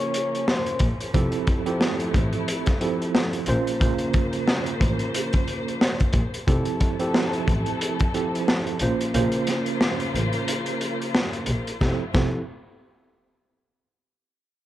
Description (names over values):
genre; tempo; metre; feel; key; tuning
hip hop, boom-bap hip-hop; 90 BPM; 4/4; swing 56% on 16ths; F major; A4 = 436 Hz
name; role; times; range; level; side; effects
vibraphone with soft mallets; melody; 0.0-0.8 s; C5 to Db6; -28 LUFS; left 3 dB; high-pass filter, low-pass filter, analog delay
mellow tine electric piano; accompaniment; 0.0-12.4 s; Bb2 to Db5; -27 LUFS; right 3 dB; medium stereo tremolo, high-pass filter, low-pass filter
warm studio string section; sustained chords; 0.0-12.1 s; C3 to C5; -32 LUFS; left 2 dB; high-pass filter, low-pass filter
crunchy breakbeat drum kit; drums; 0.1-12.3 s; hi-hat, kick drum, snare drum; -24 LUFS; equal; none
warm double bass; bass; 0.8-12.2 s; F1 to Bb1; -26 LUFS; equal; none
room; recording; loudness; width
light reverb, studio ambience; none; -21 LUFS; side -13 dB against mid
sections
0.0-6.5 A section; 6.5-11.8 B section; 11.8-14.5 C section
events
kick muted 9.1-11.8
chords
0.0 Bbmadd9; 1.1 Fmaj7; 3.5 Bbmadd9; 6.5 Fmaj7; 8.8 Bbmadd9; 11.8 Fmaj7